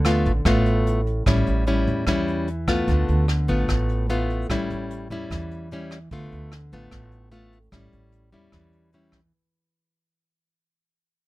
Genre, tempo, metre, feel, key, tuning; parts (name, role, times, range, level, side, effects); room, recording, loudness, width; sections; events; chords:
bossa nova; 149 BPM; 4/4; straight; D dorian; A4 = 440 Hz
nylon-string guitar; accompaniment; 0.0-9.3 s; A2 to F4; -24 LUFS; left 1 dB
upright bass; bass; 0.0-9.3 s; A1 to E2; -24 LUFS; right 1 dB
jazz brush drum kit; drums; 0.0-9.2 s; hi-hat, kick drum, rim click; -27 LUFS; equal
little or no reverb; close, detailed microphones; -20 LUFS; side -18 dB against mid
0.0-9.3 A section
fade-out 0.0-9.3
0.0 Dm6; 1.3 A7; 2.9 Dm6; 4.5 A7; 6.1 Dm6; 7.7 A7